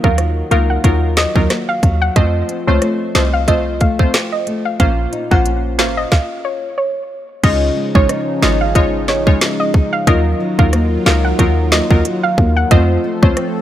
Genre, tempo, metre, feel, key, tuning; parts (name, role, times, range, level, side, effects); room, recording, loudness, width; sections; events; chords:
dancehall; 91 BPM; 4/4; swing 56% on 16ths; A4 = 437 Hz
soft round pluck; melody; 0.0-13.3 s; Db5 to Gb5; -20 LUFS; equal; chorus, tape echo
wavetable chord stab; accompaniment; 0.0-13.6 s; Gb3 to Db5; -20 LUFS; right 1 dB
flamenco guitar; arpeggios; 0.0-13.6 s; Bb2 to F4; -22 LUFS; left 3 dB
short 808-style bass; bass; 0.0-13.3 s; Ab1 to F2; -16 LUFS; equal
island pop drum kit; drums; 0.0-13.5 s; crash cymbal, hi-hat, kick drum, rim click, snare drum; -15 LUFS; equal
warm analog pad; sustained chords; 7.4-13.6 s; F3 to A4; -23 LUFS; right 1 dB; chorus, sidechain pumping
light reverb; -12 LUFS; side -12 dB against mid
0.0-7.4 A section; 7.4-13.6 B section
stop 6.1-7.4
0.0 Ebmadd9; 2.2 F; 4.8 Bbmadd9; 7.4 Dbadd9; 10.1 Ebmadd9; 12.7 F